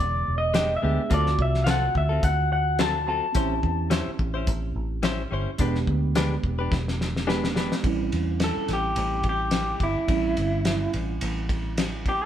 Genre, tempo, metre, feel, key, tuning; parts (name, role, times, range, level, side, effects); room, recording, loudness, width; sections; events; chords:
straight-eighth soul blues; 107 BPM; 4/4; swing 55% on 16ths; A4 = 440 Hz
electric guitar through a small old amp; melody; 0.0-3.9, 8.4-12.2 s; E4 to A5; -26 LUFS; left 1 dB
tine electric piano; accompaniment; 0.0-12.3 s; D3 to G#4; -32 LUFS; right 6 dB
vintage muted fingered electric bass; bass; 0.0-12.2 s; E1 to E2; -27 LUFS; equal
direct-recorded clean electric guitar; stabs; 0.5-7.7 s; F#3 to B#4; -31 LUFS; left 4 dB
cloth-damped thuddy drum kit; drums; 0.5-12.2 s; hi-hat, kick drum, ride cymbal, snare drum; -27 LUFS; left 1 dB
moderate stone room reverb, RT60 1.4 s; band playing live in one room; -22 LUFS; side -10 dB against mid
0.0-7.8 A section; 7.8-12.3 B section
drum fill 6.7-7.8; clean electric guitar solo 7.8-12.3
0.0 E7#9; 1.1 D7#9; 3.4 A7#9; 5.6 E7#9; 7.8 A7#9